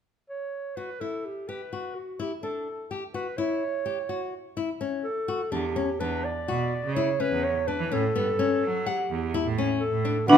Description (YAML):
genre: contemporary instrumental, chamber music in an uneven meter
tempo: 126 BPM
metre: 5/4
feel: straight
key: E dorian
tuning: A4 = 440 Hz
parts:
  - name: warm clarinet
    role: melody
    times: 0.3-10.4 s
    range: F#4 to D5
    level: -30 LUFS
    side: right 1 dB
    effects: none
  - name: nylon-string guitar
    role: arpeggios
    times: 0.8-10.4 s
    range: B3 to F#5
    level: -30 LUFS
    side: left 6 dB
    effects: none
  - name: bright cello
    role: bass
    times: 5.5-10.4 s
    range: E2 to F#3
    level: -30 LUFS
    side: right 5 dB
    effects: none
  - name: vibraphone with hard mallets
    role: second line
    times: 10.3-10.4 s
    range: D4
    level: -11 LUFS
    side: left 1 dB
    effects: none
  - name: hand-pumped harmonium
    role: sustained chords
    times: 10.3-10.4 s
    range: E3 to F#4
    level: -13 LUFS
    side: right 2 dB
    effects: none
room: light reverb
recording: minimal, uncompressed stereo recording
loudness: -26 LUFS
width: side -9 dB against mid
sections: 0.8-5.5 A section; 5.5-10.4 B section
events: none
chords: 0.0 N.C.; 0.8 Em7; 3.1 A; 5.5 Em7; 7.9 A7